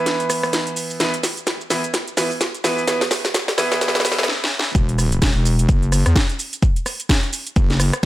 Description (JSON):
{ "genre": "bass house", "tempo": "128 BPM", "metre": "4/4", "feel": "swing 59% on 16ths", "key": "unclear", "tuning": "A4 = 440 Hz", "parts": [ { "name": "bright grand piano", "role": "stabs", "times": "0.0-4.3 s", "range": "E3 to B4", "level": "-23 LUFS", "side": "right 1 dB", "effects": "sidechain pumping, digital delay" }, { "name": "house drum kit", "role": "drums", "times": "0.1-8.0 s", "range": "hi-hat, rim click, shaker, snare drum", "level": "-20 LUFS", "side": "equal", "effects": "none" }, { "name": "wobble bass", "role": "bass", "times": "4.8-7.9 s", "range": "E1 to E2", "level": "-17 LUFS", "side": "equal", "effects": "chorus, tube saturation, sidechain pumping" }, { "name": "electronic kick drum", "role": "drums", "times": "4.8-8.1 s", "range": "none", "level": "-17 LUFS", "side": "equal", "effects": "none" } ], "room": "light reverb, digital ambience", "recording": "high-pass filter", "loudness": "-17 LUFS", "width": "side -15 dB against mid", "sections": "0.0-4.8 A section; 4.8-8.1 B section", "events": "build-up 0.0-4.8; drum fill 0.0-4.3, 4.3-4.8; break 4.3-4.8; drop 4.8-8.1", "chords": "0.0 E5" }